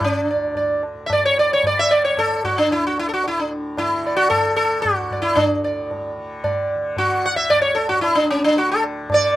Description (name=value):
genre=indian classical, Hindustani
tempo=112 BPM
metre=5/4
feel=straight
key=D raga hamsadhwani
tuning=A4 = 441 Hz
part: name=sitar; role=melody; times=0.0-9.4 s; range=C#4 to F#5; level=-17 LUFS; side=equal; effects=none
part: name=tanpura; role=drone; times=0.0-9.4 s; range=D2 to D3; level=-33 LUFS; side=left 2 dB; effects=none
part: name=tabla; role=percussion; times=0.0-9.3 s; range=none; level=-29 LUFS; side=equal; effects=none
room=moderate studio ambience, RT60 0.5 s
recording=rough home demo mix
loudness=-17 LUFS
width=side -14 dB against mid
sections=0.0-9.4 A section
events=none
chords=none